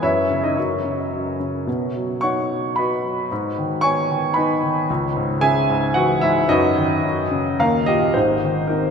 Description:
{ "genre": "classical, lyrical solo piano", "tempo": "111 BPM", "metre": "3/4", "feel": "rubato", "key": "B major", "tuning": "A4 = 440 Hz", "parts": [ { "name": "clear grand piano", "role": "solo", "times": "0.0-8.9 s", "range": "Ab1 to C#6", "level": "-18 LUFS", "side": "equal", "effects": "none" } ], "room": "wet cathedral reverb, RT60 5.3 s", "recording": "in a vast, echoing space", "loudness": "-18 LUFS", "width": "side -6 dB against mid", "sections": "0.0-8.2 A section", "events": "grand piano fill 7.3-8.2", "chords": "0.0 F#sus4; 0.6 F#; 1.7 B; 3.3 G#m; 4.9 C#m; 6.5 B/F#; 7.0 F#5; 7.6 D#; 8.2 Ab", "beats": "| 0.02 0.57 1.12 | 1.67 2.23 2.77 | 3.31 3.84 4.37 | 4.89 5.42 5.96 | 6.49 7.04 7.60 | 8.16 8.70" }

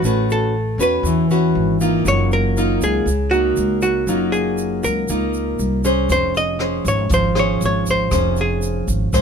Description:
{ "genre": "bossa nova", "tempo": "119 BPM", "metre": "4/4", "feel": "straight", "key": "unclear", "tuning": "A4 = 439 Hz", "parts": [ { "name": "archtop guitar, miked and amplified", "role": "melody", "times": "0.0-8.9 s", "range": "F#4 to Eb5", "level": "-21 LUFS", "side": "equal", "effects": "none" }, { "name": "nylon-string guitar", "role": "accompaniment", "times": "0.0-9.2 s", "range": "Db3 to C5", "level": "-19 LUFS", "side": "equal", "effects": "none" }, { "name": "upright bass", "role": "bass", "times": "0.0-9.2 s", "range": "F1 to E2", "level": "-22 LUFS", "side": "equal", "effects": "none" }, { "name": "egg shaker", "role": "percussion", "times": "0.0-9.2 s", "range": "none", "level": "-34 LUFS", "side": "right 7 dB", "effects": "none" }, { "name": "jazz brush drum kit", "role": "drums", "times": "6.1-9.2 s", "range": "hi-hat, kick drum, rim click", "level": "-24 LUFS", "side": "equal", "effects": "none" } ], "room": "little or no reverb", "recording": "close, detailed microphones", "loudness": "-16 LUFS", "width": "side -6 dB against mid", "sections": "0.0-9.2 A section", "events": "none", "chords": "0.0 A69; 2.0 Gbmaj13; 6.1 Dbmaj7/F", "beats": "| 0.03 0.53 1.04 1.54 | 2.05 2.56 3.06 3.57 | 4.07 4.58 5.08 5.59 | 6.10 6.60 7.11 7.62 | 8.12 8.63 9.13" }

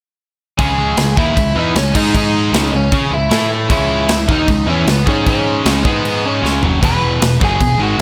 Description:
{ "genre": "punk rock", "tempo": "154 BPM", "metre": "4/4", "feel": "straight", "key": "unclear", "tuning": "A4 = 441 Hz", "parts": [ { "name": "overdriven semi-hollow guitar", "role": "melody", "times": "0.6-8.0 s", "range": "B3 to B5", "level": "-21 LUFS", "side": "equal", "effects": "none" }, { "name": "crunchy overdriven guitar", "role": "riff", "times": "0.6-8.0 s", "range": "E2 to C#5", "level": "-24 LUFS", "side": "equal", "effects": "none" }, { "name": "distorted electric guitar", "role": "riff", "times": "0.6-8.0 s", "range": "E2 to C#5", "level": "-23 LUFS", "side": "equal", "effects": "overdrive" }, { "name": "overdriven semi-hollow guitar", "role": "riff", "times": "0.6-8.0 s", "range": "E2 to C#5", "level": "-25 LUFS", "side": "equal", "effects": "none" }, { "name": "growling picked electric bass", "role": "bass", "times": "0.6-8.0 s", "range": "E1 to C#3", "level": "-22 LUFS", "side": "equal", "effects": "overdrive" }, { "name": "big rock drum kit", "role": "drums", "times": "0.6-8.0 s", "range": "crash cymbal, kick drum, snare drum, splash cymbal, toms", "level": "-20 LUFS", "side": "equal", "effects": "none" } ], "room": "light reverb", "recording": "none", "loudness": "-14 LUFS", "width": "mono", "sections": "0.6-8.0 A section", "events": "drum fill 6.4-6.8", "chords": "0.6 C#5; 1.9 G#5; 2.5 C#5; 3.3 A5; 3.7 C#5; 5.1 G#5; 5.6 C#5; 5.8 G#5; 6.4 C#5; 6.6 E", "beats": "| 0.59 0.98 1.36 1.75 | 2.14 2.53 2.92 3.31 | 3.70 4.09 4.48 4.87 | 5.26 5.65 6.04 6.42 | 6.81 7.20 7.59 7.98" }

